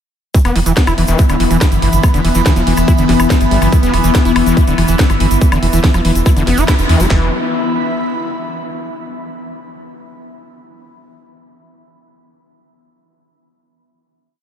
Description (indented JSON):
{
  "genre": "psychedelic trance",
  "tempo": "142 BPM",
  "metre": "4/4",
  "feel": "straight",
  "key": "unclear",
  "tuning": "A4 = 440 Hz",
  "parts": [
    { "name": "evolving wavetable pad", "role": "sustained chords", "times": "1.1-7.1 s", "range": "E3 to B3", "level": "-19 LUFS", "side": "left 3 dB", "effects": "phaser, built-in reverb, sidechain pumping" },
    { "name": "screaming distorted acid line", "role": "riff", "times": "0.3-7.3 s", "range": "D3 to E4", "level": "-19 LUFS", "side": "equal", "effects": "distortion, chorus, auto-pan, sidechain pumping, ping-pong delay" },
    { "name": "garage drum kit", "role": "drums", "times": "0.3-7.2 s", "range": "handclaps, kick drum, snare drum", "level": "-11 LUFS", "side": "equal", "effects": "small room ambience" },
    { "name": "garage drum kit", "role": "drums", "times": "0.3-7.1 s", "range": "hi-hat, snare drum, woodblock", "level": "-21 LUFS", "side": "left 1 dB", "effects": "small room ambience" },
    { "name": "tube shaker", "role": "percussion", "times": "0.3-7.1 s", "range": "none", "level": "-28 LUFS", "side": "left 2 dB", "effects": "none" },
    { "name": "airy breathy pad", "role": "texture", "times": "0.6-8.8 s", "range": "B3 to B5", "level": "-22 LUFS", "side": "equal", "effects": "chorus, phaser, sidechain pumping" },
    { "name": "round analog bass", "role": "bass", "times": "0.5-7.3 s", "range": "D1 to E2", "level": "-15 LUFS", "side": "equal", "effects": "none" }
  ],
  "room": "moderate cathedral reverb, RT60 7.0 s",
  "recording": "dreamy mix soaked in reverb",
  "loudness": "-10 LUFS",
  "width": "side -9 dB against mid",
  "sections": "0.3-7.1 groove; 7.1-8.8 final chord",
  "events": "band accent 6.7",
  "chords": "0.3 E5",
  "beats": "| 0.34 0.77 1.19 1.61 | 2.03 2.46 2.88 3.30 | 3.73 4.15 4.57 4.99 | 5.42 5.84 6.26 6.68 | 7.11 7.53 7.95 8.37"
}